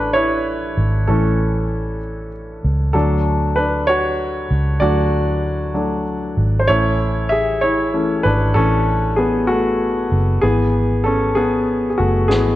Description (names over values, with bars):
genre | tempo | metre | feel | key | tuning
six-eight pop ballad | 64 BPM (dotted quarters) | 6/8 | straight | A major | A4 = 439 Hz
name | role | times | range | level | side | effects
clear baby grand piano | accompaniment | 0.0-12.6 s | E3 to E5 | -17 LUFS | left 1 dB | none
vintage muted fingered electric bass | bass | 0.0-12.6 s | F#1 to D2 | -20 LUFS | equal | none
snare drum | drums | 12.3-12.4 s | none | -24 LUFS | equal | none
room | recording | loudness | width
light reverb, studio ambience | worn, warbling old tape, cassette tape, warbly pitch drift | -15 LUFS | side -15 dB against mid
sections
0.0-12.6 A section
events
grand piano solo 0.0-12.6; drum fill 12.3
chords
0.0 A; 2.9 D; 6.7 A; 10.4 E